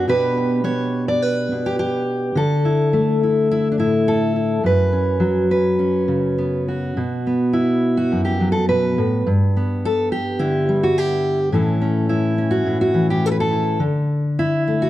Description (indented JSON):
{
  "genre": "folk, solo fingerstyle acoustic guitar",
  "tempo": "105 BPM",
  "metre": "4/4",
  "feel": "rubato",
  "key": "B minor",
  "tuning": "A4 = 440 Hz",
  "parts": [
    { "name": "fingerpicked steel-string acoustic guitar", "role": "solo", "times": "0.0-14.9 s", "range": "F#2 to D5", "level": "-17 LUFS", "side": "equal", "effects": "none" }
  ],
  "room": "light reverb",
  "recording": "dark, warm production",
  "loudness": "-17 LUFS",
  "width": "side -14 dB against mid",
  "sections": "0.0-7.0 A section; 7.0-14.9 B section",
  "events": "none",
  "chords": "0.1 G/B; 2.4 Dsus2; 4.6 F#sus4; 7.0 B5; 9.3 G6; 11.5 A; 13.8 D5",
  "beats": "| 0.08 0.66 1.23 1.80 | 2.37 2.93 3.50 4.07 | 4.64 5.21 5.79 6.38 | 6.97 7.55 8.13 8.71 | 9.28 9.85 10.41 10.98 | 11.54 12.10 12.66 13.23 | 13.81 14.38"
}